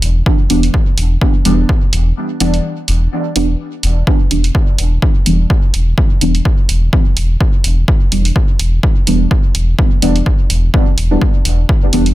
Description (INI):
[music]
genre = dub techno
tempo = 126 BPM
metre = 4/4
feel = swing 56% on 16ths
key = E minor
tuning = A4 = 441 Hz
[part]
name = round analog bass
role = bass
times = 0.0-12.1 s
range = E1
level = -14 LUFS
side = equal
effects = sidechain pumping
[part]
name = electronic hi-hat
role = drums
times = 0.0-12.1 s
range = none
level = -20 LUFS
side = right 2 dB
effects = none
[part]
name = electronic kick drum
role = drums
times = 0.3-11.8 s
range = none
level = -12 LUFS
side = equal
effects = none
[part]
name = deep mellow chord stab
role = stabs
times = 0.5-12.0 s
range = E3 to D4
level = -18 LUFS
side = equal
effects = chorus, phaser, sidechain pumping, dub echo
[sound]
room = little or no reverb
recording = dense, heavily limited modern master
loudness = -11 LUFS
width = side -16 dB against mid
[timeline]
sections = 0.0-12.1 A section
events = break 2.2-4.1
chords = 0.0 Em7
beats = | 0.26 0.74 1.22 1.69 | 2.17 2.64 3.12 3.60 | 4.07 4.55 5.02 5.50 | 5.98 6.45 6.93 7.41 | 7.88 8.36 8.83 9.31 | 9.79 10.26 10.74 11.21 | 11.69